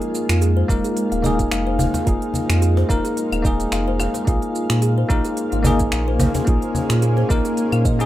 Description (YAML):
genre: organic downtempo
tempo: 109 BPM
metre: 4/4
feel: swing 55% on 16ths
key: F minor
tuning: A4 = 440 Hz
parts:
  - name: bell-like tine electric piano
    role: accompaniment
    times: 0.0-8.1 s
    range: Bb3 to Bb4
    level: -22 LUFS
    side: left 2 dB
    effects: medium stereo tremolo, sidechain pumping, tape echo
  - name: granular cloud pad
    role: sustained chords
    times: 0.0-8.1 s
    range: Ab3 to F5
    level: -26 LUFS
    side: right 1 dB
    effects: built-in reverb, sidechain pumping
  - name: organic electronic drum kit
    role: drums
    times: 0.0-8.1 s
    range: claves, finger snaps, hi-hat, shaker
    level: -28 LUFS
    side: right 1 dB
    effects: overdrive, small room ambience
  - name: kalimba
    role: arpeggios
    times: 0.3-7.9 s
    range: F4 to F5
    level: -29 LUFS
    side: equal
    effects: tape echo
  - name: warm sub bass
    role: bass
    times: 0.3-8.1 s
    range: Eb1 to Bb2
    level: -20 LUFS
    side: equal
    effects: tube saturation, sidechain pumping
  - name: electronic kick drum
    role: drums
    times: 0.7-8.0 s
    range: none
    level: -21 LUFS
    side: equal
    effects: overdrive, small room ambience
  - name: cajon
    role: percussion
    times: 1.2-7.3 s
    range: none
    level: -24 LUFS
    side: left 1 dB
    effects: none
room: moderate studio reverb, RT60 0.5 s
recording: rough home demo mix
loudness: -17 LUFS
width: side -14 dB against mid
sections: 0.0-8.1 A section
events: none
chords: 0.0 Fm7; 4.3 Bbm9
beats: 0.42 0.97 1.52 | 2.07 2.62 3.17 3.72 | 4.27 4.82 5.37 5.92 | 6.47 7.03 7.58